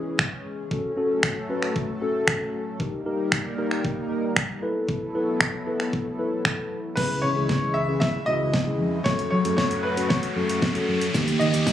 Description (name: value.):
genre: dance-pop.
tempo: 115 BPM.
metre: 4/4.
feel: straight.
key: C# minor.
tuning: A4 = 438 Hz.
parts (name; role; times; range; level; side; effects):
mellow tine electric piano; accompaniment; 0.0-11.7 s; A#3 to B4; -28 LUFS; left 2 dB; slow stereo tremolo, sidechain pumping.
chorused pulse-width pad; sustained chords; 0.0-11.7 s; C#3 to A#4; -31 LUFS; equal; sidechain pumping.
pop drum kit; drums; 0.2-11.7 s; crash cymbal, finger snaps, hi-hat, kick drum, shaker, snare drum; -24 LUFS; equal; none.
clear concert grand piano; melody; 7.0-11.7 s; B4 to E5; -27 LUFS; equal; dub echo.
vintage muted fingered electric bass; bass; 7.0-11.7 s; C#2 to F#3; -27 LUFS; equal; sidechain pumping.
riser; sound effects; 8.4-11.7 s; none; -32 LUFS; equal; none.
room: moderate digital room reverb, RT60 1.0 s.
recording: recorded on a phone in the room, club reverb, compression.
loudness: -22 LUFS.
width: side -11 dB against mid.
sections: 0.0-7.0 A section; 7.0-11.7 B section.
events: build-up 7.0-11.7; drum fill 7.0-11.7; riser 8.4-11.7.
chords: 0.0 C#m; 0.7 F#m; 2.8 D#; 4.6 B7sus4; 7.0 C#m; 9.1 F#m; 11.1 D#.